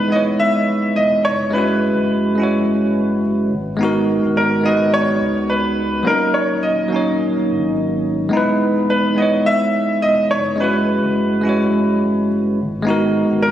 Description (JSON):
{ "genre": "sunset chillout", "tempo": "106 BPM", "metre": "4/4", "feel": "swing 56% on 16ths", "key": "E lydian", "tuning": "A4 = 444 Hz", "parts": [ { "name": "clear concert grand piano", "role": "melody", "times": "0.0-13.5 s", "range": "A#4 to E5", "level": "-19 LUFS", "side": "equal", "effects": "digital delay" }, { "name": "bell-like tine electric piano", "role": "accompaniment", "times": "0.0-13.5 s", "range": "F#3 to C#5", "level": "-16 LUFS", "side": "equal", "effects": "auto-pan, vintage 12-bit sampler grit, digital delay" }, { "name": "warm sub bass", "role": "bass", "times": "0.0-13.5 s", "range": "D#1 to C#2", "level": "-31 LUFS", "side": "equal", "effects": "none" } ], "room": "wet lush hall reverb, RT60 2.1 s", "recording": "recorded on a phone in the room, studio reverb, compression", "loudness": "-15 LUFS", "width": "side -11 dB against mid", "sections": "0.0-13.5 A section", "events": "none", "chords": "0.0 Emaj7; 1.5 F#9sus4; 3.5 G#m9; 6.1 D#m7; 8.3 Emaj7; 10.6 F#9sus4; 12.6 G#m9", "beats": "0.41 0.98 | 1.54 2.11 2.68 3.24 | 3.81 4.38 4.94 5.51 | 6.07 6.64 7.21 7.77 | 8.34 8.90 9.47 10.04 | 10.60 11.17 11.73 12.30 | 12.87 13.43" }